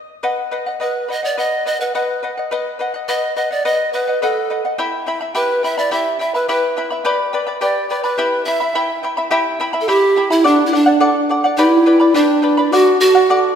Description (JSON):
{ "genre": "andean folk, Andean ensemble", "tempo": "106 BPM", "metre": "2/4", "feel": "straight", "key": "E minor from 9.3 s", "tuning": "A4 = 440 Hz", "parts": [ { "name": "charango", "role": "accompaniment", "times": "0.2-13.6 s", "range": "E4 to B5", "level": "-18 LUFS", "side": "left 2 dB", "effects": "none" }, { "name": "bright polished pan flute", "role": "melody", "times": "0.8-13.5 s", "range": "D4 to E5", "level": "-15 LUFS", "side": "right 2 dB", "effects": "none" } ], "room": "wet scoring stage reverb, RT60 1.8 s", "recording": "minimal, uncompressed stereo recording", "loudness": "-14 LUFS", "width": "side -8 dB against mid", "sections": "0.2-9.3 A section; 9.3-13.6 B section", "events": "none", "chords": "0.2 B; 4.8 Em; 7.1 G; 8.2 Em; 10.5 D; 11.6 G; 12.7 D" }